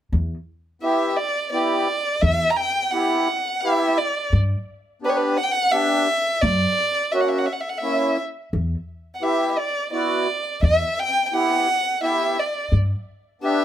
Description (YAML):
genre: klezmer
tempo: 86 BPM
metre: 3/4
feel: straight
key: E dorian sharp4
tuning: A4 = 440 Hz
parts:
  - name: upright bass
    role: bass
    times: 0.1-12.9 s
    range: E2 to G2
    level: -20 LUFS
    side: equal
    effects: none
  - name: warm violin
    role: melody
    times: 0.8-13.6 s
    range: B4 to A#5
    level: -21 LUFS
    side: equal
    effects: none
  - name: accordion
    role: accompaniment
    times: 0.8-13.6 s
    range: A#3 to G4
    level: -22 LUFS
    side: equal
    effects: light tremolo tuning
room: moderate small room reverb, RT60 0.5 s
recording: none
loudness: -19 LUFS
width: side -10 dB against mid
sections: 0.1-13.6 A section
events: none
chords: 0.1 Em; 4.3 G; 6.4 F#; 8.5 Em; 12.7 G